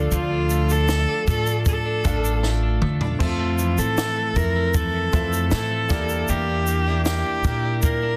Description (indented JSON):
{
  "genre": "acoustic pop",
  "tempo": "78 BPM",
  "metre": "4/4",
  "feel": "straight",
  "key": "unclear",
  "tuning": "A4 = 441 Hz",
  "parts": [
    { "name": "clear baby grand piano", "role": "accompaniment", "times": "0.0-8.2 s", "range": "F3 to F5", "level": "-36 LUFS", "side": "equal", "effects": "none" },
    { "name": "picked steel-string acoustic guitar", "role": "accompaniment", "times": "0.0-8.2 s", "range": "D3 to Bb4", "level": "-32 LUFS", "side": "equal", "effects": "double-tracked" },
    { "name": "twelve-string electric guitar", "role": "arpeggios", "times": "0.0-8.2 s", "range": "E3 to D4", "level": "-34 LUFS", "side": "equal", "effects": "none" },
    { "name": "upright bass", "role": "bass", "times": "0.0-8.2 s", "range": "A1 to Bb2", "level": "-26 LUFS", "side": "equal", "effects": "none" },
    { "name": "rich cello", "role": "melody", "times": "0.1-8.2 s", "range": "F4 to Bb4", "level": "-27 LUFS", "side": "equal", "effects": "delay" },
    { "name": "compact cocktail drum kit", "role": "drums", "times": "0.1-8.0 s", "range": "kick drum, shaker, snare drum, splash cymbal, toms", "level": "-27 LUFS", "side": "equal", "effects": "none" }
  ],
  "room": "light reverb",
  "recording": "dense, heavily limited modern master",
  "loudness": "-22 LUFS",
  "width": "mono",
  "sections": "0.0-8.2 A section",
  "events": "drum fill 2.4-3.2",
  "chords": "0.0 Dm; 3.2 Fmaj7; 5.9 Em7b5",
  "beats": "| 0.12 0.89 1.66 2.43 | 3.21 3.98 4.75 5.52 | 6.29 7.06 7.83"
}